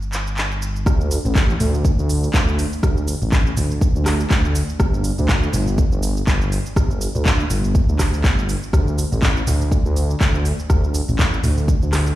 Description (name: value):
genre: afro house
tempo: 122 BPM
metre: 4/4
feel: swing 57% on 16ths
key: unclear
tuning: A4 = 440 Hz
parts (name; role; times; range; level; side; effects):
- dark detuned saw bass; bass; 0.0-12.1 s; G1 to D2; -20 LUFS; equal; sidechain pumping
- afro-pop drum kit; drums; 0.0-12.2 s; handclaps, hi-hat, rim click, shaker, toms; -24 LUFS; equal; none
- electronic kick drum; drums; 0.9-11.8 s; none; -17 LUFS; equal; none
room: little or no reverb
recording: played on a big sound system in a bare room, large studio reverb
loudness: -16 LUFS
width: side -15 dB against mid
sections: 0.9-12.2 A section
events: drop 0.9-12.2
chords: none